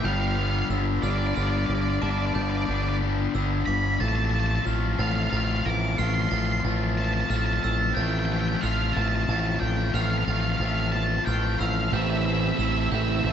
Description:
rock; 60 BPM (dotted quarters); 6/8; straight; A4 = 437 Hz
octave-fuzz lead guitar; melody; 0.0-13.3 s; D5 to D6; -30 LUFS; right 2 dB; distortion, digital delay
pedal steel guitar; sustained chords; 0.0-13.3 s; F4 to A5; -39 LUFS; right 2 dB
glockenspiel with brass mallets; arpeggios; 0.0-13.3 s; D6 to A6; -35 LUFS; right 9 dB; digital delay
distorted electric guitar; riff; 0.0-13.3 s; G2 to F4; -28 LUFS; left 7 dB; distortion, slapback echo
growling fingered electric bass; bass; 0.0-13.3 s; G1 to A1; -26 LUFS; right 1 dB; overdrive
sludgy distorted guitar; riff; 11.9-13.3 s; A2 to E4; -28 LUFS; right 13 dB; overdrive
light reverb, digital ambience; nothing above 7.8 kHz; -22 LUFS; side -8 dB against mid
0.0-13.3 A section
0.0 G5; 4.0 F/A; 11.9 Am7
| 0.04 1.03 | 2.02 3.01 | 4.00 5.00 | 5.99 6.98 | 7.97 8.96 | 9.95 10.95 | 11.94 12.93

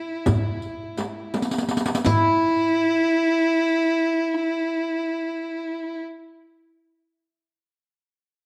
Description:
Turkish makam ensemble; 168 BPM (eighths); 9/8; straight; A4 = 440 Hz
qanun; melody; 0.0-6.1 s; E4; -25 LUFS; equal
rich violin; second line; 0.0-6.0 s; E4; -25 LUFS; equal
darbuka; percussion; 0.3-2.4 s; -28 LUFS; equal
frame drum; percussion; 0.3-2.4 s; -31 LUFS; equal
riq; percussion; 0.3-2.4 s; -28 LUFS; equal
moderate recital hall reverb, RT60 1.4 s; dark, warm production; -23 LUFS; mono
0.0-2.1 A section; 2.1-5.3 B section
drum fill 1.3-2.1
0.27 0.63 0.99 1.34 1.70 | 2.06 2.42 2.77 3.13 3.49 3.84 4.20 4.56 4.91

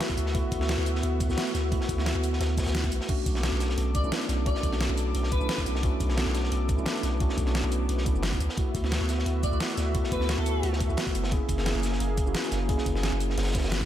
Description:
liquid drum and bass; 175 BPM; 4/4; swing 53% on 16ths; B dorian; A4 = 444 Hz
mellow tine electric piano; accompaniment; 0.0-13.9 s; A3 to G#4; -32 LUFS; equal; medium stereo tremolo, tape echo
warm analog pad; sustained chords; 0.0-13.9 s; A#3 to D6; -36 LUFS; right 1 dB; chorus, sidechain pumping
crunchy breakbeat drum kit; drums; 0.0-13.9 s; hi-hat, snare drum; -37 LUFS; equal; high-pass filter on hats, high-pass filter on snare, high-pass filter on room
pop drum kit; drums; 0.0-13.9 s; crash cymbal, hi-hat, shaker, snare drum; -34 LUFS; equal; overdrive
electronic kick drum; drums; 0.1-13.9 s; -29 LUFS; equal; overdrive
long sustained 808-style bass; bass; 0.2-13.9 s; F#1 to D2; -28 LUFS; equal; tube saturation
airy dreamy lead; melody; 3.9-5.6, 9.4-10.6 s; A4 to D5; -37 LUFS; left 2 dB; chorus, tape echo
light reverb; -25 LUFS; side -11 dB against mid
0.0-13.9 A section
0.0 D69; 3.1 Bm7; 8.4 D69; 11.3 F#9
0.00 | 0.35 0.69 1.03 1.38 | 1.72 2.06 2.40 2.75 | 3.09 3.43 3.78 4.12 | 4.46 4.80 5.15 5.49 | 5.83 6.18 6.52 6.86 | 7.20 7.55 7.89 8.23 | 8.58 8.92 9.26 9.60 | 9.95 10.29 10.63 10.98 | 11.32 11.66 12.00 12.35 | 12.69 13.03 13.38 13.72

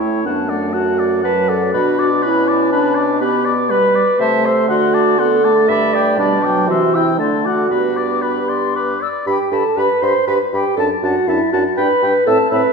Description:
quick classical-period movement for wind quintet; 121 BPM; 3/4; rubato; G major from 3.2 s; A4 = 440 Hz
hollow concert flute; melody; 0.0-12.7 s; E5 to E6; -22 LUFS; left 6 dB
warm oboe; second line; 0.0-12.6 s; B4 to B5; -22 LUFS; left 4 dB
warm French horn; accompaniment; 0.0-12.6 s; E3 to G4; -22 LUFS; left 2 dB
warm clarinet; accompaniment; 0.0-12.7 s; D4 to E5; -16 LUFS; right 3 dB
warm bassoon; bass; 0.0-12.6 s; F#2 to D3; -22 LUFS; right 1 dB
wet recital hall reverb, RT60 1.5 s; heard from further back in the room; -13 LUFS; side -4 dB against mid
0.0-9.3 A section; 9.3-12.7 B section
0.2 D/F#; 1.7 Bm; 4.2 Am/C; 4.7 D7; 5.7 G; 6.2 G/B; 6.7 C; 7.2 D7; 7.7 G; 10.8 D/F#; 11.8 G
| 0.25 0.74 1.24 | 1.74 2.23 2.72 | 3.21 3.71 4.20 | 4.70 5.19 5.69 | 6.18 6.69 7.20 | 7.71 8.24 8.75 | 9.27 9.78 10.28 | 10.78 11.28 11.77 | 12.26

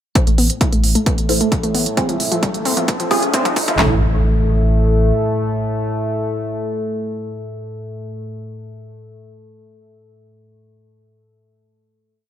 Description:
driving peak-time techno; 132 BPM; 4/4; straight; A4 = 438 Hz
filtered dub chord stab; stabs; 0.2-8.4 s; C4 to C#5; -23 LUFS; right 1 dB; phaser, lush chorus, vintage 12-bit sampler grit, sidechain pumping, dub echo
analog drone; drone; 0.6-8.2 s; A2 to A3; -22 LUFS; left 1 dB; chorus, sidechain pumping
electronic hi-hat; drums; 0.2-3.8 s; -22 LUFS; right 3 dB
techno drum kit; drums; 0.2-3.9 s; handclaps, kick drum, snare drum, toms; -18 LUFS; equal
riser and impact; sound effects; 1.8-8.5 s; -27 LUFS; left 1 dB
wide unison pluck; riff; 0.3-4.0 s; F3 to E4; -21 LUFS; equal; tube saturation, sidechain pumping, tape echo
saturated sub bass; bass; 0.3-5.1 s; F1 to A1; -18 LUFS; equal; overdrive, sidechain pumping, low-pass filter
moderate stone room reverb, RT60 1.4 s; high-pass filter; -15 LUFS; side -10 dB against mid
0.2-3.8 build; 3.8-7.4 final chord
build-up 0.2-3.8; filter sweep on synth arpeggio sound 0.2-3.8; filter sweep on synth stab 0.2-3.8; filter sweep 0.2-3.8; riser 1.8-3.8; drum fill 2.0-3.8
0.2 A5; 2.0 Fm; 3.8 A
| 0.15 0.61 1.06 1.52 | 1.97 2.43 2.88 3.34 | 3.79 4.25 4.70 5.16 | 5.61 6.06 6.52 6.97

